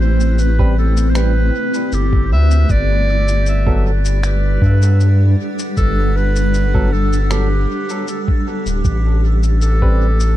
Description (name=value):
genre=ambient dub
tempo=78 BPM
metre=4/4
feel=straight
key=unclear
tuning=A4 = 440 Hz
part: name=bright clarinet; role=melody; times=0.0-10.4 s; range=G4 to E5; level=-23 LUFS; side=right 1 dB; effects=vintage 12-bit sampler grit, dub echo
part: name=granular cloud pad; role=sustained chords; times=0.0-10.4 s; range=G3 to G5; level=-22 LUFS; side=equal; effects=built-in reverb
part: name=round analog bass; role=bass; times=0.0-10.4 s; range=D1 to G2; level=-14 LUFS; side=equal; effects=tube saturation
part: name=electronic cabasa and finger snaps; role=drums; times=0.2-10.3 s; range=none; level=-30 LUFS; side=left 3 dB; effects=studio reverb, dub echo
part: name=barky tine electric piano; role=stabs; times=0.6-10.1 s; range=F#3 to B4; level=-28 LUFS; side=right 2 dB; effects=medium stereo tremolo, dub echo
part: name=electronic kick drum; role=drums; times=0.6-10.0 s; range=none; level=-17 LUFS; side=equal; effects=studio reverb
room=little or no reverb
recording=dark, warm production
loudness=-13 LUFS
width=side -14 dB against mid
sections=0.0-10.4 A section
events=none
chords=0.0 Am9; 2.7 Gmaj9; 8.8 Am9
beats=0.39 1.16 1.93 | 2.70 3.46 4.23 5.00 | 5.77 6.54 7.31 8.08 | 8.85 9.62